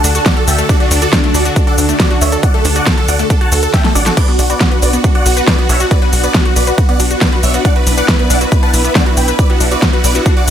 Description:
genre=uplifting trance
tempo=138 BPM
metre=4/4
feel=straight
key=B minor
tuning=A4 = 438 Hz
part: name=big supersaw lead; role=melody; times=0.0-10.5 s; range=D4 to A5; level=-17 LUFS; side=right 1 dB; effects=phaser, sidechain pumping, ping-pong delay
part: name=analog string pad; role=sustained chords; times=0.0-10.5 s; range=D3 to A4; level=-20 LUFS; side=equal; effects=ensemble chorus, sidechain pumping
part: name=analog pluck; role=arpeggios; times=0.0-10.4 s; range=A3 to B4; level=-21 LUFS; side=left 2 dB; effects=chorus, sidechain pumping, ping-pong delay
part: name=tight sequencer bass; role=bass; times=0.0-10.5 s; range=A1 to D2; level=-15 LUFS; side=equal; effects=sidechain pumping
part: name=big-room dance drum kit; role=drums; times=0.0-10.5 s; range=crash cymbal, hi-hat, shaker, snare drum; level=-16 LUFS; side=equal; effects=overdrive, sidechain pumping on hats, sidechain pumping on perc, sidechain pumping on cymbals
part: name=electronic kick drum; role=drums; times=0.3-10.3 s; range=none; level=-12 LUFS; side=equal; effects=overdrive
room=digital ambience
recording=none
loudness=-9 LUFS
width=side -9 dB against mid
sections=0.0-10.5 A section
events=drum fill 3.7-4.2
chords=0.0 D; 4.2 Bm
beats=0.26 | 0.69 1.13 1.56 2.00 | 2.43 2.87 3.30 3.74 | 4.17 4.61 5.04 5.48 | 5.91 6.35 6.78 7.21 | 7.65 8.09 8.52 8.95 | 9.39 9.82 10.26

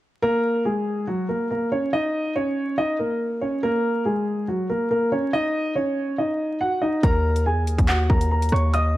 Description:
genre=hip hop, drill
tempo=141 BPM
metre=4/4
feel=half-time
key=Eb minor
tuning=A4 = 440 Hz
part: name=dark concert grand piano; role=melody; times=0.2-9.0 s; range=Gb3 to Eb6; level=-22 LUFS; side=equal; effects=none
part: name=distorted 808-style bass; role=bass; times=7.0-9.0 s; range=Eb2 to Fb2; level=-20 LUFS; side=equal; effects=distortion
part: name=drill drum kit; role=drums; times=7.0-8.8 s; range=handclaps, hi-hat, kick drum, rim click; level=-22 LUFS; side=equal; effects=none
room=light reverb, digital ambience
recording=vinyl crackle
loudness=-20 LUFS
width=side -15 dB against mid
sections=0.2-7.0 A section; 7.0-9.0 B section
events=none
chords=0.2 Eb5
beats=| 0.23 0.65 1.08 1.50 | 1.93 2.35 2.78 3.20 | 3.63 4.05 4.48 4.91 | 5.33 5.76 6.18 6.61 | 7.03 7.46 7.88 8.31 | 8.73

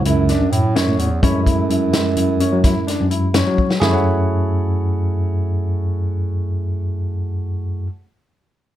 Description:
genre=progressive instrumental, band music in an uneven meter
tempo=255 BPM (eighths)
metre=11/8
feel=straight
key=F# minor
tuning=A4 = 440 Hz
part: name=mellow bass clarinet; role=melody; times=0.0-3.3 s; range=E2 to A2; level=-19 LUFS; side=right 4 dB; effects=none
part: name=barky tine electric piano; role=accompaniment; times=0.0-7.9 s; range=F#3 to G#4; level=-26 LUFS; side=right 2 dB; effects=none
part: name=overdriven tine electric piano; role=bass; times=0.0-7.9 s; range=C#2 to F#3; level=-19 LUFS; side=left 1 dB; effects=fast tremolo
part: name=warm concert grand piano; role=arpeggios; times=0.1-7.9 s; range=C#4 to F#5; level=-24 LUFS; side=left 4 dB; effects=none
part: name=vintage drum kit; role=drums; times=0.1-3.9 s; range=hi-hat, kick drum, snare drum, toms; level=-20 LUFS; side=left 1 dB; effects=none
room=light reverb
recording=none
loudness=-16 LUFS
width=side -12 dB against mid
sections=0.0-3.8 A section; 3.8-6.4 B section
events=drum fill 3.6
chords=0.0 Dmaj7; 1.2 F#m7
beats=0.05 0.28 0.52 0.76 0.99 | 1.23 1.46 1.70 1.93 2.17 2.40 2.64 2.87 3.11 3.34 3.58 | 3.81 4.05 4.29 4.52 4.76 4.99 5.23 5.46 5.70 5.93 6.17

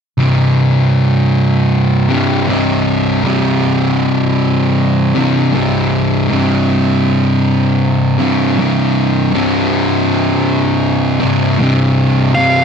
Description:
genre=metal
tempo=79 BPM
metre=4/4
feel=straight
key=unclear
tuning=A4 = 440 Hz
part: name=fuzz guitar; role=riff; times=0.2-12.6 s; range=C2 to C3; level=-11 LUFS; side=equal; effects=distortion
part: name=fuzz lead guitar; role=melody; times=12.3-12.6 s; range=F5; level=-10 LUFS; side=right 1 dB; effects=distortion
room=little or no reverb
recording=dark, warm production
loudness=-11 LUFS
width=side -6 dB against mid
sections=0.2-12.4 A section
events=none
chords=0.2 C5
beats=| 0.21 0.97 1.74 2.50 | 3.26 4.02 4.78 5.54 | 6.30 7.06 7.82 8.58 | 9.33 10.09 10.85 11.60 | 12.36

